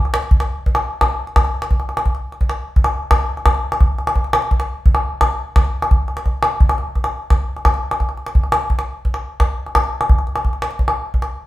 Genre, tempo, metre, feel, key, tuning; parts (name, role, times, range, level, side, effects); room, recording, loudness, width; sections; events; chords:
west african traditional; 114 BPM (dotted quarters); 12/8; straight
calabash; percussion; 0.1-11.3 s; -15 LUFS; equal
wet studio reverb, RT60 0.7 s; band playing live in one room; -16 LUFS; side -16 dB against mid
0.0-11.5 A section